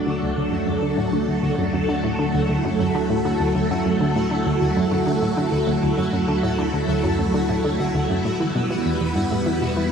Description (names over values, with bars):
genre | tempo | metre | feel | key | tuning
ambient, sequencer-driven space music | 99 BPM | 4/4 | straight | unclear | A4 = 439 Hz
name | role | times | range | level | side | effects
phased string machine | sustained chords | 0.0-9.9 s | F#3 to B4 | -22 LUFS | equal | ensemble chorus, phaser
warm sub bass | bass | 0.0-9.9 s | D2 to E2 | -34 LUFS | equal | none
pulsing gated texture | texture | 0.0-9.9 s | F#4 to F#5 | -30 LUFS | right 1 dB | chorus, built-in reverb
analog pluck | riff | 0.1-9.9 s | D2 to E3 | -23 LUFS | equal | chorus, ping-pong delay
room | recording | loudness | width
wet cathedral reverb, RT60 6.0 s | dreamy mix soaked in reverb, lossy compression artefacts | -19 LUFS | side -7 dB against mid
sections
0.0-9.9 A section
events
fade-in on sub bass 0.0-9.9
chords
0.0 D; 8.2 Em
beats
0.37 | 0.98 1.58 2.19 2.80 | 3.40 4.01 4.61 5.22 | 5.83 6.43 7.04 7.64 | 8.25 8.86 9.46